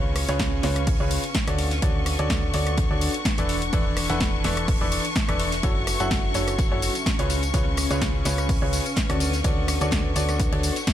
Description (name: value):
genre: piano house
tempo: 126 BPM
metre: 4/4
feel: swing 54% on 16ths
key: unclear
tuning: A4 = 440 Hz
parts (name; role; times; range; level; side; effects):
- clear studio string section; sustained chords; 0.0-10.9 s; C#6; -32 LUFS; left 4 dB; sidechain pumping
- clear grand piano; riff; 0.0-10.7 s; C#3 to F#5; -28 LUFS; equal; sidechain pumping, tape echo
- solid FM bass; bass; 0.0-10.7 s; E1 to D2; -27 LUFS; equal; sidechain pumping
- granular cloud pad; texture; 0.0-10.9 s; C#4 to C#6; -33 LUFS; right 1 dB; built-in reverb, sidechain pumping
- big rock drum kit; drums; 0.2-10.9 s; hi-hat, ride cymbal, snare drum; -36 LUFS; left 1 dB; high-pass filter on cymbals, high-pass filter on hats, high-pass filter on snare, high-pass filter on room
- house drum kit; drums; 0.2-10.9 s; hi-hat, rim click, snare drum, tambourine; -29 LUFS; left 1 dB; none
- electronic kick drum; drums; 0.4-10.9 s; none; -26 LUFS; equal; none
room: studio ambience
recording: none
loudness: -21 LUFS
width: side -11 dB against mid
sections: 0.0-10.9 A section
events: none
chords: 0.0 C#7; 1.6 E7sus4; 5.6 F#m7; 7.3 C#7; 9.2 E7sus4 (rootless)